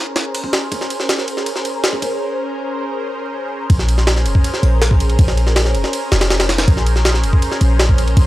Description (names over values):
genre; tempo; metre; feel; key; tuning
drum and bass, jungle; 161 BPM; 4/4; straight; Bb minor; A4 = 440 Hz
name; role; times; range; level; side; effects
lush unison pad; sustained chords; 0.0-8.3 s; Db4 to C5; -22 LUFS; equal; chorus, phaser
jungle sampler-style drum kit; drums; 0.2-8.3 s; kick drum, ride cymbal, snare drum; -16 LUFS; equal; high-pass filter on kick, high-pass filter on snare, high-pass filter on cymbals
warm 808-style bass; bass; 3.7-8.3 s; F1 to Bb1; -15 LUFS; equal; none
room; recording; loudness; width
little or no reverb; dry, gritty hardware recording, vinyl crackle; -14 LUFS; side -16 dB against mid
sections
0.0-3.7 A section; 3.7-8.3 B section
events
build-up 0.0-3.7; filter sweep on analog synth pad 0.0-3.7; break 2.2-3.7; drop 3.7-8.3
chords
0.0 Bbm9